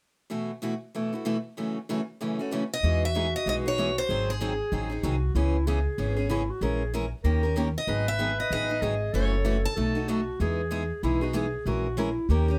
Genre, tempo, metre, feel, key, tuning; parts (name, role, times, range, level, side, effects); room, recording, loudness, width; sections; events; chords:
acoustic string swing (jazz manouche); 190 BPM; 4/4; swing 59% on 8ths; E major; A4 = 442 Hz
picked steel-string acoustic guitar; accompaniment; 0.3-12.6 s; F#2 to A#4; -32 LUFS; equal
picked steel-string acoustic guitar; melody; 2.7-4.9, 7.8-10.2 s; G#4 to A5; -32 LUFS; equal
breathy clarinet; second line; 2.8-12.6 s; E4 to B4; -34 LUFS; equal
upright bass; bass; 2.8-12.6 s; F#1 to E2; -30 LUFS; equal
light reverb; -28 LUFS; mono
0.3-2.8 A section; 2.8-12.6 B section
0.3 B7sus4; 1.6 F#m7; 2.8 Emaj7; 4.1 G#7; 5.4 C#m7; 6.6 A#m7b5; 7.3 D#7; 7.9 G#m7; 9.1 F#m7; 9.8 B7; 10.4 Emaj7; 11.7 A#m7b5